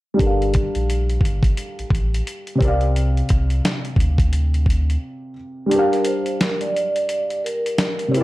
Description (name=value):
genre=lo-fi hip hop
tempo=87 BPM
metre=4/4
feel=swing 60% on 16ths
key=G minor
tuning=A4 = 443 Hz
part: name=dark upright piano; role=accompaniment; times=0.1-8.2 s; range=C3 to F5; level=-23 LUFS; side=equal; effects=low-pass filter
part: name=warm sub bass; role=bass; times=0.2-5.0 s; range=G1 to D2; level=-20 LUFS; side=equal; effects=none
part: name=dusty soul sampler-style drum kit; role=drums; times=0.2-8.2 s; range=hi-hat, kick drum, snare drum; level=-21 LUFS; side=equal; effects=none
part: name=vibraphone with soft mallets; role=melody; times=5.9-8.2 s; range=Bb4 to D5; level=-22 LUFS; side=right 1 dB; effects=plate reverb
room=moderate studio reverb, RT60 0.6 s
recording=none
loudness=-18 LUFS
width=side -18 dB against mid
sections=0.2-5.7 A section; 5.7-8.2 B section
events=filter sweep on upright piano 0.2-5.7; break 5.0-5.7; kick muted 5.7-8.2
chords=0.2 Gm9; 2.6 C9sus4; 5.7 Gm7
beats=| 0.20 0.88 1.57 2.26 | 2.95 3.64 4.33 5.02 | 5.71 6.40 7.09 7.78